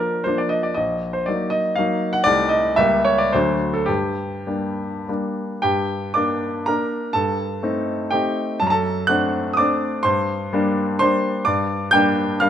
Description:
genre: classical, romantic triple-time dance for piano with dotted rhythms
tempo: 95-137 BPM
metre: 3/4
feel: rubato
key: G minor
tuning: A4 = 442 Hz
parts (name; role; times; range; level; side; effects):
- clear baby grand piano; solo; 0.0-12.5 s; Bb1 to G6; -18 LUFS; equal; none
room: moderate recital hall reverb, RT60 1.5 s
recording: close, detailed microphones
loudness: -18 LUFS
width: side -9 dB against mid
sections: 0.0-5.6 A section; 5.6-12.5 B section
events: none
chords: 0.0 Bb; 0.8 Ebm/Bb; 2.3 Am7b5/C; 2.8 C#dim7; 3.3 D7; 3.9 Gm; 7.2 Am7b5/G; 8.6 D7/F#; 10.1 Gm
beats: 0.27 | 0.77 1.27 1.77 | 2.26 2.78 3.34 | 3.89 4.47 5.08 | 5.64 6.17 6.68 | 7.16 7.63 8.13 | 8.62 9.10 9.60 | 10.06 10.53 11.01 | 11.46 11.93 12.40

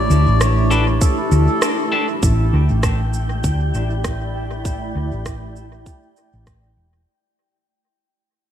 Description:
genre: ambient dub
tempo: 99 BPM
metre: 4/4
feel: swing 57% on 16ths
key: unclear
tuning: A4 = 438 Hz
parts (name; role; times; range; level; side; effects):
- melodica; melody; 0.0-1.9 s; A4 to D5; -25 LUFS; equal; dub echo
- granular cloud pad; sustained chords; 0.0-7.1 s; A3 to E5; -24 LUFS; equal; built-in reverb
- hollow-body short-scale fingered electric bass; bass; 0.0-7.0 s; E1 to D2; -17 LUFS; equal; none
- electronic cabasa and rim click; drums; 0.1-6.6 s; none; -26 LUFS; right 2 dB; studio reverb, dub echo
- electric guitar at the edge of break-up; stabs; 0.7-2.1 s; D4 to A4; -26 LUFS; left 4 dB; dub echo
- electronic kick drum; drums; 1.0-6.6 s; none; -20 LUFS; equal; studio reverb
- wind-like tuned noise texture; texture; 2.4-7.1 s; G5; -34 LUFS; left 1 dB; built-in reverb
room: light reverb, digital ambience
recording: none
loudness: -16 LUFS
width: side -10 dB against mid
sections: 0.0-2.2 A section; 2.2-7.1 B section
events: band accent 1.6-1.9; fade-out 2.2-7.1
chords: 0.0 A7sus4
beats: 0.41 1.01 1.62 | 2.23 2.83 3.44 4.04 | 4.65 5.26 5.86 6.47

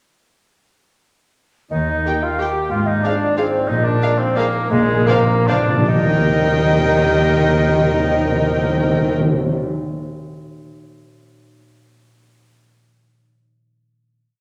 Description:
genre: classical, orchestral ballroom waltz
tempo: 139-197 BPM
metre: 3/4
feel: rubato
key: Eb major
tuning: A4 = 439 Hz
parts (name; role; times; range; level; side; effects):
- large flute ensemble; second line; 1.7-9.1 s; Ab4 to G5; -29 LUFS; equal; none
- warm cor anglais; second line; 1.7-9.1 s; Ab3 to G4; -26 LUFS; equal; none
- mellow bassoon; accompaniment; 1.7-9.1 s; Ab3 to G4; -24 LUFS; equal; none
- concert harp; arpeggios; 1.7-9.8 s; Ab2 to Eb5; -29 LUFS; equal; none
- warm chamber cello section; bass; 1.7-9.1 s; Eb2 to Eb3; -27 LUFS; equal; none
- warm chamber double bass section; bass; 1.7-9.1 s; Ab1 to Eb2; -28 LUFS; equal; none
- warm chamber violin section; melody; 2.1-9.1 s; F5 to G5; -30 LUFS; equal; none
- warm chamber violin section; second line; 2.1-9.1 s; Bb4 to Eb5; -31 LUFS; equal; none
- dark chamber viola section; accompaniment; 2.1-9.1 s; G4 to C5; -28 LUFS; equal; none
- mellow French horn section; sustained chords; 2.1-9.1 s; Ab3 to G4; -29 LUFS; equal; none
- timpani; percussion; 4.7-9.6 s; Bb2 to Eb3; -22 LUFS; equal; none
room: wet recital hall reverb, RT60 1.5 s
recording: none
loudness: -17 LUFS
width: mono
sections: 1.7-5.9 A section; 5.9-8.3 final chord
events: slowing down 3.2-5.9; timpani fill 4.7-5.9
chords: 1.7 Eb; 2.7 Fm/Ab; 3.7 Bb7sus4; 4.7 Bb9; 5.9 Eb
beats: | 1.72 2.06 2.40 | 2.72 3.04 3.38 | 3.70 4.03 4.38 | 4.72 5.08 5.48 | 5.89 6.29 6.72 | 7.12 7.52 7.95

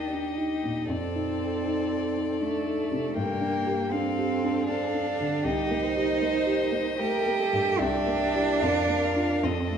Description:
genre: classical, slow romantic movement for piano quartet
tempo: 78 BPM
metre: 3/4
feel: uneven beats, rubato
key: unclear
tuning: A4 = 441 Hz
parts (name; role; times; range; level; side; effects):
- bright violin; melody; 0.0-9.8 s; D5 to G5; -34 LUFS; left 6 dB; none
- rich cello; second line; 0.0-9.8 s; A3 to G4; -28 LUFS; right 5 dB; none
- rich violin; second line; 0.0-9.8 s; G4 to C5; -33 LUFS; left 2 dB; none
- warm concert grand piano; accompaniment; 0.0-9.8 s; C2 to Bb4; -29 LUFS; left 1 dB; none
room: wet recital hall reverb, RT60 1.4 s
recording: recorded in a church or concert hall, nothing above 10.7 kHz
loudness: -24 LUFS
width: side -7 dB against mid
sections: 0.0-9.8 A section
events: none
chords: 0.0 Eb; 0.9 F6; 3.2 Gm7; 5.4 Cm7; 7.8 C7; 8.6 Bb/F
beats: 0.13 | 0.89 1.67 2.42 | 3.15 3.92 4.68 | 5.45 6.22 6.99 | 7.79 8.61 9.43

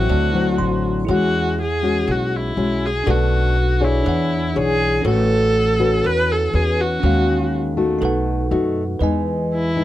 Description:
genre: bossa nova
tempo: 121 BPM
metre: 4/4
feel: straight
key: unclear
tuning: A4 = 440 Hz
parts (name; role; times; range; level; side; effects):
- warm viola; melody; 0.0-9.8 s; E4 to B4; -21 LUFS; right 1 dB; none
- bell-like tine electric piano; accompaniment; 0.0-9.8 s; C#4 to C6; -27 LUFS; right 5 dB; none
- nylon-string guitar; accompaniment; 0.0-9.8 s; B2 to C#5; -21 LUFS; left 4 dB; none
- upright bass; bass; 0.0-9.8 s; A1 to F#2; -21 LUFS; right 1 dB; none
room: light reverb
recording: close, detailed microphones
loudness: -16 LUFS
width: side -14 dB against mid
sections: 0.0-9.0 A section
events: tine electric piano fill 0.3-1.1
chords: 0.1 D9; 1.1 E69; 3.1 Bm7; 4.1 E13; 5.0 A69; 7.0 D#m11; 8.0 B7; 9.0 Emaj7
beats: 0.10 0.59 | 1.09 1.58 2.08 2.57 | 3.07 3.56 4.06 4.55 | 5.05 5.54 6.04 6.53 | 7.03 7.52 8.02 8.51 | 9.01 9.50

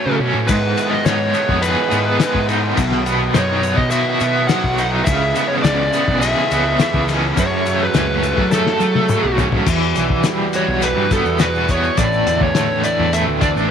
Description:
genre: psychedelic rock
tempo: 104 BPM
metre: 4/4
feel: straight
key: unclear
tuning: A4 = 441 Hz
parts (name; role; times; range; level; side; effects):
- fuzz lead guitar; melody; 0.0-13.5 s; A4 to F#5; -21 LUFS; equal; distortion, slapback echo
- hand-pumped harmonium; sustained chords; 0.0-13.7 s; C#3 to E5; -26 LUFS; right 11 dB; none
- cranked stack guitar; riff; 0.0-13.7 s; F#2 to A4; -19 LUFS; equal; overdrive, tremolo
- fuzz picked electric bass; bass; 0.1-13.7 s; A1 to F#3; -22 LUFS; equal; overdrive
- cloth-damped thuddy drum kit; drums; 0.5-13.6 s; crash cymbal, hi-hat, kick drum, ride cymbal, snare drum, toms; -21 LUFS; left 4 dB; none
- tube shaker; percussion; 0.5-13.6 s; none; -37 LUFS; left 12 dB; none
- organ-like drone; drone; 10.4-13.7 s; E2; -32 LUFS; left 2 dB; none
room: light reverb, studio reverb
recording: 1960s-style stereo with parts hard left and right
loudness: -14 LUFS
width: side -8 dB against mid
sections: 0.0-9.7 A section; 9.7-13.7 B section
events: drum fill 8.5-9.7; lead electric guitar solo 9.7-13.7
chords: 0.5 G#m; 2.8 B; 5.1 C#m7; 7.4 F#m; 9.7 Emadd9; 12.0 Asus4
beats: | 0.49 1.06 1.63 2.21 | 2.78 3.35 3.92 4.50 | 5.07 5.64 6.22 6.79 | 7.37 7.95 8.52 9.10 | 9.68 10.25 10.83 11.41 | 11.98 12.56 13.13

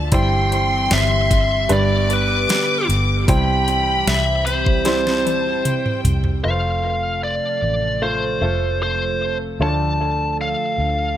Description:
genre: pop ballad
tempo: 76 BPM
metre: 4/4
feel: straight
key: C major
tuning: A4 = 440 Hz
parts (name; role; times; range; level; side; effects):
- clear studio violin section; second line; 0.0-6.4 s; G5 to D6; -24 LUFS; left 1 dB; none
- bright upright piano; accompaniment; 0.0-11.2 s; G2 to D5; -26 LUFS; right 1 dB; tape echo
- chorused pulse-width pad; sustained chords; 0.0-11.2 s; C3 to A4; -27 LUFS; right 2 dB; none
- vintage muted fingered electric bass; bass; 0.0-11.2 s; F1 to D2; -22 LUFS; equal; none
- biting lead guitar; melody; 0.1-11.2 s; B4 to A5; -21 LUFS; equal; overdrive, tape echo
- smooth R&B drum kit; drums; 0.1-6.4 s; hi-hat, kick drum, snare drum, toms; -20 LUFS; equal; tape echo
room: little or no reverb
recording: echo-heavy mix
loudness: -16 LUFS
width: side -11 dB against mid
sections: 0.0-6.4 A section; 6.4-11.2 B section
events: drum fill 4.9-6.4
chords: 0.1 C/G; 1.7 G; 3.3 C; 6.4 F; 9.6 Dm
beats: | 0.13 0.92 1.71 2.49 | 3.28 4.07 4.86 5.65 | 6.44 7.23 8.02 8.81 | 9.60 10.39

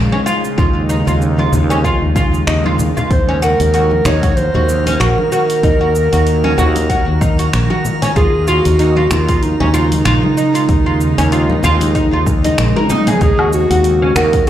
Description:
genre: organic downtempo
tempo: 95 BPM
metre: 4/4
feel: swing 56% on 16ths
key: Eb minor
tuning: A4 = 439 Hz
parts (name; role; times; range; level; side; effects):
- bowed-like drone; sustained chords; 0.0-14.5 s; Db3 to F5; -22 LUFS; equal; built-in reverb, sidechain pumping
- fretless electric bass; bass; 0.0-14.5 s; Bb1 to Eb2; -15 LUFS; equal; sidechain pumping
- oud; arpeggios; 0.1-14.5 s; Db4 to Bb4; -19 LUFS; equal; vintage 12-bit sampler grit, low-pass filter, digital delay
- congas; percussion; 0.1-13.2 s; none; -23 LUFS; left 2 dB; none
- deep house drum kit; drums; 0.3-14.5 s; cabasa, finger snaps, hi-hat, toms, woodblock; -23 LUFS; equal; none
- electronic kick drum; drums; 0.6-14.4 s; none; -16 LUFS; equal; none
- dark clarinet; melody; 3.1-14.5 s; Eb4 to Db5; -17 LUFS; right 1 dB; ping-pong delay
- drifting glass-harmonics texture; texture; 3.5-13.2 s; Bb4 to Bb5; -29 LUFS; right 3 dB; chorus, built-in reverb
room: moderate echo chamber reverb, RT60 1.6 s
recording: played on a big sound system in a bare room, large studio reverb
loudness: -11 LUFS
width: side -11 dB against mid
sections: 0.0-13.2 A section; 13.2-14.5 A section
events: drum fill 12.7-13.2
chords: 0.0 Dbadd9; 3.1 Ebm; 8.2 Dbadd9; 13.2 Ebm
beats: | 0.58 1.21 1.84 2.48 | 3.11 3.74 4.37 5.00 | 5.63 6.27 6.90 7.53 | 8.16 8.79 9.42 10.05 | 10.69 11.32 11.95 12.58 | 13.21 13.85 14.48

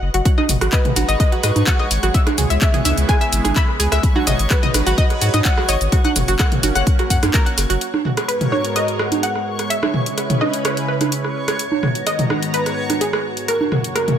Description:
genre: progressive house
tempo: 127 BPM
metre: 4/4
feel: straight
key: G# minor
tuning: A4 = 440 Hz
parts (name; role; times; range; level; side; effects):
- saturated sub bass; bass; 0.0-7.8 s; F#1 to G#2; -19 LUFS; equal; sidechain pumping
- analog pluck; arpeggios; 0.1-7.7 s; F#4 to F#5; -22 LUFS; equal; chorus, sidechain pumping, digital delay
- house drum kit; drums; 0.1-14.2 s; handclaps, hi-hat, shaker; -23 LUFS; left 1 dB; none
- lush unison pad; sustained chords; 0.8-14.2 s; F#2 to A#5; -26 LUFS; equal; chorus, phaser, sidechain pumping
- electronic kick drum; drums; 0.3-7.4 s; none; -16 LUFS; equal; none
- backwards swelling texture; texture; 1.1-14.2 s; C#5 to C#6; -31 LUFS; right 1 dB; built-in reverb, sidechain pumping
- punchy analog drum machine; percussion; 0.4-14.2 s; congas, rim click, toms; -22 LUFS; right 3 dB; sidechain pumping on perc, sidechain pumping on toms, sidechain pumping on snare
- wide unison pluck; melody; 0.7-14.1 s; G#4 to B5; -25 LUFS; equal; dub echo
room: light reverb, digital ambience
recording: none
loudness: -15 LUFS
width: side -9 dB against mid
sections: 0.0-7.8 A section; 7.8-14.2 B section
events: none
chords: 0.3 G#m7; 2.1 C#m7; 4.0 G#m7; 5.9 F#; 7.8 G#m7; 9.7 C#m7; 11.6 G#m7; 13.5 F#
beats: | 0.26 0.73 1.20 1.67 | 2.15 2.62 3.09 3.56 | 4.03 4.51 4.98 5.45 | 5.92 6.40 6.87 7.34 | 7.81 8.29 8.76 9.23 | 9.70 10.18 10.65 11.12 | 11.59 12.07 12.54 13.01 | 13.48 13.96

